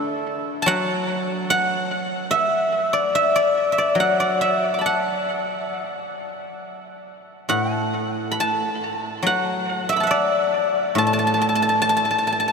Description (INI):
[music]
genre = chinese traditional, Chinese solo plucked strings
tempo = 66-75 BPM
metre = 4/4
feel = rubato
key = D gong mode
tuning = A4 = 436 Hz
[part]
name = guzheng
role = solo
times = 0.0-12.5 s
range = A2 to D6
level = -19 LUFS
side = equal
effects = tape echo
[sound]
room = wet huge ambient reverb, RT60 7.1 s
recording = dreamy mix soaked in reverb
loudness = -19 LUFS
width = side -5 dB against mid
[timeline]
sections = 0.0-12.5 A section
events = none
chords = none